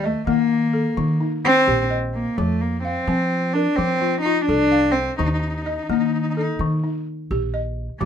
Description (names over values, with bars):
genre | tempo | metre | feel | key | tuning
west african traditional, West African string and xylophone music | 85 BPM (dotted quarters) | 12/8 | straight | unclear | A4 = 440 Hz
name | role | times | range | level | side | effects
rich cello | melody | 0.0-8.1 s | A3 to Eb4 | -20 LUFS | equal | none
balafon | arpeggios | 0.0-8.1 s | Eb3 to F5 | -24 LUFS | left 3 dB | none
upright bass | bass | 0.0-8.1 s | Bb1 to F3 | -26 LUFS | right 1 dB | none
djembe | percussion | 8.0-8.1 s | none | -24 LUFS | right 5 dB | none
room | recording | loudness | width
light reverb | minimal, uncompressed stereo recording | -18 LUFS | side -8 dB against mid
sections
0.0-8.1 A section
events
none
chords
0.0 Eb; 2.4 F; 5.2 Eb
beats
0.27 0.97 1.67 | 2.38 3.08 3.78 4.49 | 5.19 5.90 6.60 7.31 | 8.01